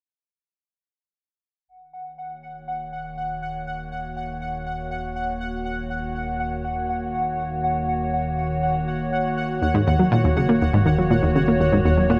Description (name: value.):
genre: ambient, sequencer-driven space music.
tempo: free time.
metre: none.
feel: none.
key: Eb minor.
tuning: A4 = 440 Hz.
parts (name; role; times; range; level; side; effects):
evolving wavetable pad; sustained chords; 2.4-12.2 s; Eb3 to Db5; -29 LUFS; equal; chorus, built-in reverb.
fat analog bass; bass; 1.7-12.2 s; Eb1; -34 LUFS; equal; none.
pulsing gated texture; texture; 1.9-12.2 s; Gb5; -30 LUFS; equal; chorus, built-in reverb.
analog pluck; riff; 9.6-12.2 s; Eb2 to Bb3; -20 LUFS; equal; chorus, delay.
room: wet huge ambient reverb, RT60 8.7 s.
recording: none.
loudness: -23 LUFS.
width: mono.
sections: 1.7-12.2 A section.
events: fade-in on ambient pad 1.7-12.2; fade-in on analog synth bass 1.7-12.2.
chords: 1.7 Ebm7.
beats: free time.